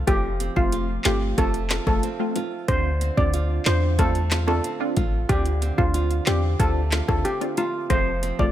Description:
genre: dancehall.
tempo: 92 BPM.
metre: 4/4.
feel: straight.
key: D minor.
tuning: A4 = 440 Hz.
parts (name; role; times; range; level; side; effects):
nylon-string guitar; arpeggios; 0.0-8.5 s; D3 to F4; -32 LUFS; right 7 dB; tape echo.
clean 808-style bass; bass; 0.0-8.5 s; F1 to E2; -24 LUFS; equal; none.
steel pan; melody; 0.1-8.5 s; F4 to D5; -26 LUFS; equal; tape echo.
punchy chord stab; accompaniment; 0.1-8.5 s; A3 to F4; -29 LUFS; right 1 dB; chorus, sidechain pumping.
afro-pop drum kit; drums; 0.1-8.5 s; handclaps, hi-hat, kick drum, rim click, snare drum; -25 LUFS; equal; overdrive.
bongos; percussion; 0.1-8.5 s; none; -36 LUFS; left 9 dB; none.
room: digital ambience.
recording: none.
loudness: -20 LUFS.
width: side -12 dB against mid.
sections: 0.0-8.5 A section.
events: none.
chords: 0.0 F; 2.7 Dm7; 7.9 F.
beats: | 0.08 0.73 1.38 2.03 | 2.68 3.34 3.99 4.64 | 5.29 5.95 6.60 7.25 | 7.90.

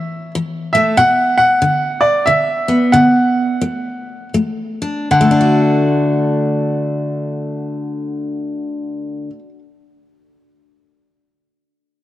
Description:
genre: country.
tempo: 76-95 BPM.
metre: 3/4.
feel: swing 61% on 8ths.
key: D major.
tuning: A4 = 440 Hz.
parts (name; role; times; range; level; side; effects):
bright upright piano; melody; 0.0-9.3 s; D5 to F#5; -14 LUFS; right 1 dB; none.
picked steel-string acoustic guitar; accompaniment; 0.0-9.6 s; B2 to F#4; -16 LUFS; left 1 dB; none.
room: moderate plate reverb, RT60 3.2 s.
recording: dark, warm production.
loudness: -13 LUFS.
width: side -14 dB against mid.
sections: 0.0-5.1 A section; 5.1-9.8 B section.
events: slowing down 1.0-5.1.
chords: 0.0 A5; 1.0 Bm; 2.9 D.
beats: 0.36 | 0.99 1.62 2.27 | 2.93 3.62 4.35 | 5.11 5.90 6.69 | 7.48 8.27 9.06.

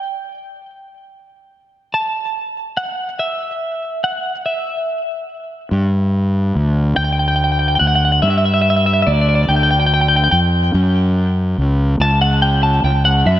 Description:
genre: post-rock.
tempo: 48 BPM (dotted quarters).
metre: 6/8.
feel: straight.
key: unclear.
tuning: A4 = 439 Hz.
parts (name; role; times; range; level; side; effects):
twelve-string electric guitar; melody; 0.0-13.4 s; D5 to A5; -17 LUFS; equal; tape echo.
fuzz fingered electric bass; bass; 5.7-13.4 s; C#2 to G2; -14 LUFS; equal; overdrive.
room: moderate lush hall reverb, RT60 2.1 s.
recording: dreamy mix soaked in reverb.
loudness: -14 LUFS.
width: side -12 dB against mid.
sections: 0.0-5.7 A section; 5.7-13.4 B section.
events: none.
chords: 0.0 N.C.; 5.7 G5; 10.7 F#5.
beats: | 0.68 1.94 | 3.20 4.46 | 5.72 6.98 | 8.23 9.49 | 10.75 12.00 | 13.26.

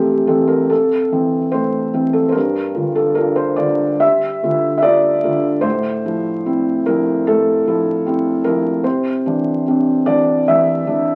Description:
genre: neoclassical minimalist piano.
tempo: 74 BPM.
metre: 4/4.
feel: rubato.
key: unclear.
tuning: A4 = 441 Hz.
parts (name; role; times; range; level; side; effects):
felt-muted upright piano; solo; 0.0-11.2 s; F2 to E5; -17 LUFS; equal; none.
room: wet club reverb, RT60 0.5 s.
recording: very old 78 rpm record, vinyl crackle.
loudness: -17 LUFS.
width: mono.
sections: 0.0-11.2 A section.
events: none.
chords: 0.0 Fmaj7; 2.3 G5; 5.6 Fmaj7/A; 8.8 Cadd9.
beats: 0.70 1.53 | 2.35 3.17 4.01 4.84 | 5.64 6.45 7.26 8.06 | 8.84 9.64 10.44.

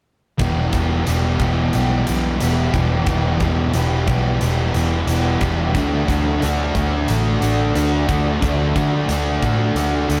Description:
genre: rock, shoegaze and dream pop.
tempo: 90 BPM.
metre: 4/4.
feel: straight.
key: E minor.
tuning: A4 = 440 Hz.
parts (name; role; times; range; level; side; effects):
overdriven semi-hollow guitar; riff; 0.4-10.2 s; E2 to G4; -25 LUFS; equal; reverse reverb.
thick fuzz guitar; riff; 0.4-10.2 s; E2 to D4; -24 LUFS; equal; distortion, subtle chorus.
vintage muted fingered electric bass; bass; 0.4-10.2 s; E1 to D3; -23 LUFS; equal; none.
huge arena drum kit; drums; 0.4-10.2 s; hi-hat, kick drum; -28 LUFS; equal; none.
room: wet huge ambient reverb, RT60 6.2 s.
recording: dreamy mix soaked in reverb.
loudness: -19 LUFS.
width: mono.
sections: 0.4-10.2 A section.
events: none.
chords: 0.4 Em; 5.8 D.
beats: | 0.40 1.07 1.74 2.41 | 3.08 3.75 4.42 5.09 | 5.76 6.43 7.10 7.76 | 8.43 9.10 9.77.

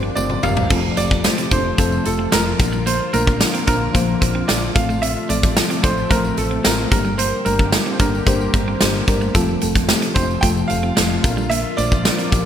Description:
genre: 1980s-style pop.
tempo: 111 BPM.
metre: 4/4.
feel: straight.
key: F major.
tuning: A4 = 440 Hz.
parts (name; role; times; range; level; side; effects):
clear concert grand piano; melody; 0.0-12.5 s; A4 to G5; -24 LUFS; right 2 dB; none.
mellow FM electric piano; accompaniment; 0.0-12.5 s; F3 to D5; -22 LUFS; left 3 dB; chorus.
sweeping resonant pad; sustained chords; 0.0-12.5 s; C3 to G4; -30 LUFS; left 1 dB; chorus.
clean electric guitar; riff; 0.0-12.4 s; G3 to D4; -28 LUFS; right 5 dB; none.
woody fretless electric bass; bass; 0.0-12.5 s; F1 to Bb1; -24 LUFS; equal; none.
big rock drum kit; drums; 0.2-12.4 s; crash cymbal, hi-hat, kick drum, snare drum, tambourine, toms; -19 LUFS; equal; none.
tambourine; percussion; 0.2-12.4 s; none; -34 LUFS; left 5 dB; none.
room: moderate lush hall reverb, RT60 2.5 s.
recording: bright 1980s-style digital production.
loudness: -15 LUFS.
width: side -9 dB against mid.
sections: 0.7-12.5 A section.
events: drum fill 0.2-0.7.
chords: 0.0 Gm7; 0.7 F; 2.6 Bb; 4.8 F/A; 6.9 Gm; 9.4 F; 11.2 Bb.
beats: 0.16 | 0.70 1.24 1.78 2.32 | 2.86 3.40 3.94 4.49 | 5.03 5.57 6.11 6.65 | 7.19 7.73 8.27 8.81 | 9.35 9.89 10.43 10.97 | 11.51 12.05.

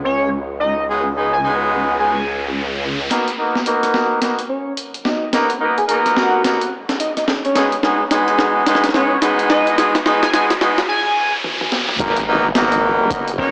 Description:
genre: glitch hop.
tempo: 108 BPM.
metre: 4/4.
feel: swing 61% on 16ths.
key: unclear.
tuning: A4 = 440 Hz.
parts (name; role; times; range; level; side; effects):
sync lead; melody; 0.0-13.5 s; C#5 to G#5; -23 LUFS; equal; subtle chorus, analog delay.
formant-sweep wobble bass; bass; 0.0-3.1, 12.0-13.5 s; F#1 to C#2; -26 LUFS; equal; chorus.
riser and impact; sound effects; 0.4-13.5 s; none; -29 LUFS; equal; none.
warm horn section; stabs; 0.9-13.5 s; G#3 to A#4; -20 LUFS; equal; sidechain pumping, low-pass filter, analog delay.
boom bap sampler-style drum kit; drums; 3.1-13.4 s; hi-hat, rim click, snare drum, toms; -23 LUFS; equal; low-pass filter on snare, low-pass filter on hats, low-pass filter on toms, low-pass filter on room.
electronic kick drum; drums; 12.0-13.5 s; none; -31 LUFS; equal; none.
room: moderate plate reverb, RT60 1.6 s.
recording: dry, gritty hardware recording, high-pass filter, small speaker sound.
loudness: -17 LUFS.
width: mono.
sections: 0.0-3.1 A section; 3.1-12.0 B section; 12.0-13.5 C section.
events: riser 0.4-3.1; build-up 3.1-12.0; drum fill 3.1-10.9, 11.4-12.0; filter sweep on horn section 3.1-12.0; filter sweep on analog synth lead 3.1-12.0; filter sweep 3.1-12.0; break 10.9-12.0; drop 12.0-13.5; impact 12.0-13.5.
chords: 0.0 C#9sus4; 3.1 Bmaj7; 7.6 B6; 12.0 G#m9.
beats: 0.33 | 0.89 1.44 2.00 2.55 | 3.11 3.67 4.22 4.78 | 5.33 5.89 6.44 7.00 | 7.55 8.11 8.66 9.22 | 9.78 10.33 10.89 11.44 | 12.00 12.55 13.11.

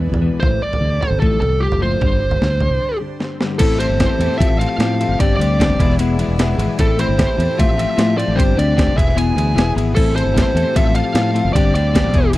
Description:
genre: indie rock.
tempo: 151 BPM.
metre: 4/4.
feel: straight.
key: A minor.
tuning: A4 = 441 Hz.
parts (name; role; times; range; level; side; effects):
airy breathy pad; sustained chords; 0.0-12.4 s; G3 to C6; -31 LUFS; right 2 dB; chorus.
crunchy overdriven guitar; riff; 0.0-12.4 s; E2 to A4; -21 LUFS; left 5 dB; none.
twelve-string electric guitar; riff; 0.0-12.4 s; E3 to A4; -33 LUFS; right 5 dB; ensemble chorus.
fingered electric bass; bass; 0.0-12.4 s; E1 to A2; -19 LUFS; equal; none.
breakbeat sampler-style drum kit; drums; 0.1-12.4 s; crash cymbal, kick drum, ride cymbal, snare drum, toms; -18 LUFS; equal; none.
fuzz lead guitar; melody; 0.4-12.3 s; G4 to G#5; -21 LUFS; right 1 dB; distortion, tape echo.
room: little or no reverb.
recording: dry, close 1970s-style studio recording.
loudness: -14 LUFS.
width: side -16 dB against mid.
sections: 0.0-3.6 A section; 3.6-12.4 B section.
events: break 2.8-3.6; drum fill 3.2-3.6.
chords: 0.4 Am7; 1.2 Fadd9/A; 2.0 Gsus4; 3.6 Am7; 4.4 Fadd9/A; 5.2 Gsus4; 5.8 E; 6.8 Am7; 7.6 Fadd9/A; 8.4 Gsus4; 9.0 E; 10.0 Am7; 10.7 Fadd9/A; 11.5 Gsus4.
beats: 0.01 | 0.41 0.81 1.21 1.61 | 2.01 2.41 2.80 3.20 | 3.60 4.00 4.39 4.79 | 5.19 5.59 5.98 6.38 | 6.78 7.17 7.57 7.97 | 8.37 8.76 9.16 9.55 | 9.95 10.35 10.74 11.14 | 11.54 11.94 12.33.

